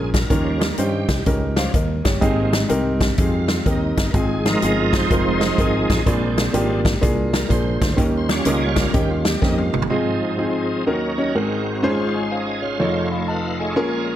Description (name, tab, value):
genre	uptempo gospel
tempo	125 BPM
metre	4/4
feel	swing 65% on 8ths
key	Ab major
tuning	A4 = 444 Hz
part	clear concert grand piano	accompaniment	0.0-14.2 s	F1 to Cb6	-22 LUFS	equal	none
part	bright tonewheel organ	sustained chords	0.0-14.2 s	F3 to Ab5	-24 LUFS	right 2 dB	slow rotary speaker, chorus vibrato
part	fingered electric bass	bass	0.0-9.9 s	F1 to G2	-24 LUFS	equal	none
part	swinging big-band drum kit	drums	0.1-9.9 s	hi-hat, kick drum, snare drum, toms	-21 LUFS	equal	none
room	light reverb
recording	none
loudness	-17 LUFS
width	side -12 dB against mid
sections	0.0-9.9 A section; 9.9-14.2 B section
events	tonewheel organ solo 0.0-9.9; drum fill 9.4-9.9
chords	0.3 Eb7; 2.2 Abmaj7; 4.1 Fm7; 6.1 Bb7; 8.0 Eb7; 9.9 Ab6; 10.9 Ebm7; 11.4 Ab9; 11.8 Dbmaj7/Ab; 12.8 Faug7